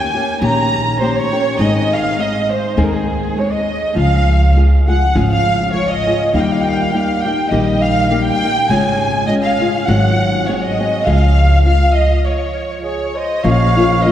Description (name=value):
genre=mexican folk, mariachi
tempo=101 BPM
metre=4/4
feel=swing 54% on 8ths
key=Db major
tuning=A4 = 440 Hz
part: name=dark symphonic violin section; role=melody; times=0.0-14.1 s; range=Ab4 to Bb5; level=-17 LUFS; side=right 1 dB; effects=none
part: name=nylon-string guitar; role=accompaniment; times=0.0-14.1 s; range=Ab2 to Ab4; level=-18 LUFS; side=left 2 dB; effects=none
part: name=upright bass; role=bass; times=0.4-14.1 s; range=Ab1 to Eb2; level=-17 LUFS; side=equal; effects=none
part: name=mellow trumpet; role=second line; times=12.8-14.1 s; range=Ab4 to Db5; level=-20 LUFS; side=right 4 dB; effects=none
part: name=concert harp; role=arpeggios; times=13.4-14.1 s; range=F3 to Db4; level=-19 LUFS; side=left 3 dB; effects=none
room=wet church reverb, RT60 3.3 s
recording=recorded in a church or concert hall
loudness=-12 LUFS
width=side -11 dB against mid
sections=0.0-13.5 A section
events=stop 12.3-13.5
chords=0.0 Eb7; 1.6 Ab; 4.0 Db; 6.3 Eb; 8.7 Db/Ab; 9.9 Ab7; 11.1 Db; 13.5 Bbm